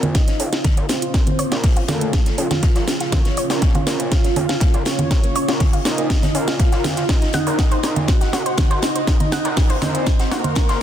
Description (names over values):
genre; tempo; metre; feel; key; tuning
melodic techno; 121 BPM; 4/4; straight; Bb minor; A4 = 440 Hz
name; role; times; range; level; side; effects
expressive portamento lead; melody; 0.0-10.8 s; F3 to Gb4; -26 LUFS; equal; ensemble chorus, sidechain pumping, tape echo
soft supersaw; second line; 0.0-10.8 s; F4 to Gb5; -29 LUFS; right 1 dB; vintage 12-bit sampler grit, sidechain pumping, low-pass filter, ping-pong delay
dark analog pad; sustained chords; 0.0-10.8 s; F4 to F5; -31 LUFS; right 4 dB; chorus, sidechain pumping
analog pluck; arpeggios; 0.0-10.8 s; Bb3 to Gb5; -27 LUFS; left 1 dB; chorus, cassette tape, sidechain pumping, ping-pong delay
filtered dub chord stab; stabs; 0.0-10.8 s; Db4 to Gb5; -36 LUFS; left 1 dB; none
gritty driven synth bass; bass; 0.0-10.8 s; F1 to Bb1; -29 LUFS; equal; distortion, tube saturation, sidechain pumping, high-pass filter
bowed-like drone; drone; 0.0-10.8 s; Bb2 to Db3; -33 LUFS; equal; none
house drum kit; drums; 0.0-10.8 s; congas, hi-hat, snare drum; -22 LUFS; right 1 dB; studio ambience
crisp fusion drum kit; drums; 0.1-10.8 s; hi-hat, snare drum; -34 LUFS; left 3 dB; high-pass filter on hats, studio ambience, high-pass filter on snare, high-pass filter on room
electronic kick drum; drums; 0.1-10.7 s; none; -17 LUFS; equal; studio ambience
room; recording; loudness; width
light reverb, digital ambience; dense, heavily limited modern master; -16 LUFS; side -10 dB against mid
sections
0.0-10.8 A section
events
build-up 0.0-10.8; drum fill 0.0-10.8; filter sweep on synth arpeggio sound 0.0-10.8; filter sweep on analog synth lead 0.0-10.8; filter sweep on supersaw synth 0.0-10.8; filter sweep on analog synth pad 0.0-10.8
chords
0.0 Bbm; 7.1 Ebmadd9/Bb